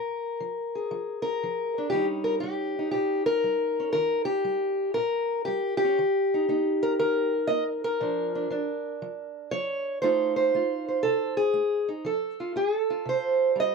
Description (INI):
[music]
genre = acoustic country blues, solo or duo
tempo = 118 BPM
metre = 4/4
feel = swing 68% on 8ths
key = unclear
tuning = A4 = 439 Hz
[part]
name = fingerpicked steel-string acoustic guitar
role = solo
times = 0.0-13.7 s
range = Bb2 to Eb5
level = -24 LUFS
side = equal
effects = none
[sound]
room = light reverb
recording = none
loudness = -24 LUFS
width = side -4 dB against mid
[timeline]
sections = 0.0-13.7 A section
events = none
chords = 0.0 Bb7(no3); 1.9 Eb7; 8.0 Bb; 10.0 F7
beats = 0.39 0.90 1.41 | 1.91 2.42 2.93 3.44 | 3.94 4.45 4.96 5.47 | 5.97 6.48 6.99 7.50 | 8.00 8.51 9.02 9.52 | 10.03 10.54 11.04 11.54 | 12.05 12.55 13.06 13.56